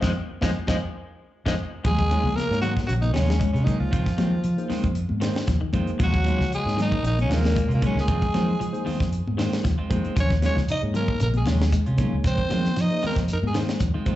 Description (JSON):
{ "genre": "afrobeat", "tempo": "116 BPM", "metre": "4/4", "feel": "swing 53% on 16ths", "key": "Eb dorian", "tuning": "A4 = 440 Hz", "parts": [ { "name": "mellow tine electric piano", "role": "accompaniment", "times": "0.0-14.2 s", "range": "Bb3 to F5", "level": "-33 LUFS", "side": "equal", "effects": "medium stereo tremolo, slapback echo" }, { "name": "semi-hollow electric guitar", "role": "arpeggios", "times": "0.0-14.1 s", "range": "Db3 to Ab3", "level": "-32 LUFS", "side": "left 6 dB", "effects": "spring reverb, slapback echo" }, { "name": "clean electric guitar", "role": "stabs", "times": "0.0-14.2 s", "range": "Eb3 to F4", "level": "-32 LUFS", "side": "right 5 dB", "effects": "spring reverb, slapback echo" }, { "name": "vintage muted fingered electric bass", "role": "bass", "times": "0.0-14.2 s", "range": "Bb1 to F3", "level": "-24 LUFS", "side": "equal", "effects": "none" }, { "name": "tight funk drum kit", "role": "drums", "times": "0.0-14.2 s", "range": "hi-hat, kick drum, snare drum", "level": "-27 LUFS", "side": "equal", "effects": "none" }, { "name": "congas", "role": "percussion", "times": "0.0-14.2 s", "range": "none", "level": "-32 LUFS", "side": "left 4 dB", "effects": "none" }, { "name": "shekere", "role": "percussion", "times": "0.0-1.6, 10.2-14.2 s", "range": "none", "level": "-32 LUFS", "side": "right 1 dB", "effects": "none" }, { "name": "clear trombone", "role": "second line", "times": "1.8-13.6 s", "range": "Bb2 to Eb4", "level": "-34 LUFS", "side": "right 3 dB", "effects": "slapback echo" }, { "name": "raspy tenor saxophone", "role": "melody", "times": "1.9-13.6 s", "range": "Bb3 to Eb5", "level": "-29 LUFS", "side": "equal", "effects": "slapback echo, tape echo" } ], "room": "studio reverb", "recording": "live gig heard through the venue's PA, club reverb, nothing above 8.0 kHz", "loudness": "-21 LUFS", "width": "side -14 dB against mid", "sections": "0.0-1.8 A section; 1.8-14.2 B section", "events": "band accent 0.0-1.8; tine electric piano solo 0.0-1.8", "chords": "0.0 Fm7; 1.8 Ebm11; 3.9 Fm7; 6.0 Ebm11; 8.1 Fm7; 10.2 Ebm11; 12.2 Fm7", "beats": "0.29 0.81 1.33 | 1.85 2.37 2.89 3.41 | 3.92 4.45 4.96 5.48 | 6.00 6.52 7.04 7.56 | 8.08 8.60 9.12 9.64 | 10.16 10.68 11.20 11.72 | 12.24 12.76 13.28 13.80" }